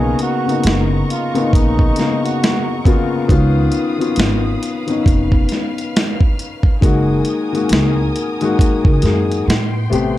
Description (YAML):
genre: lo-fi hip hop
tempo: 68 BPM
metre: 4/4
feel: swing 58% on 16ths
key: unclear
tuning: A4 = 440 Hz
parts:
  - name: breathy flugelhorn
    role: melody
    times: 0.0-2.9 s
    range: D#4 to G#4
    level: -23 LUFS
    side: right 5 dB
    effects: low-pass filter, analog delay
  - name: dark upright piano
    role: accompaniment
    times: 0.0-10.2 s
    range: C3 to G#4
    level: -18 LUFS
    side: left 4 dB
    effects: low-pass filter
  - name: rich studio string section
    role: sustained chords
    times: 0.0-10.2 s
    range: B3 to E#6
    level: -29 LUFS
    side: equal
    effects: low-pass filter
  - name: upright bass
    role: bass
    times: 0.0-10.2 s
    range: E#1 to A2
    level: -18 LUFS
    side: right 1 dB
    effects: none
  - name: dusty soul sampler-style drum kit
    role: drums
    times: 0.2-10.2 s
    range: hi-hat, kick drum, snare drum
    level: -16 LUFS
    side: equal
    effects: none
room: light reverb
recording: dark, warm production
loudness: -13 LUFS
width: side -14 dB against mid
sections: 0.0-10.2 A section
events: none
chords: 0.0 Bmaj9; 3.3 C#9; 6.8 F#69; 9.5 Am9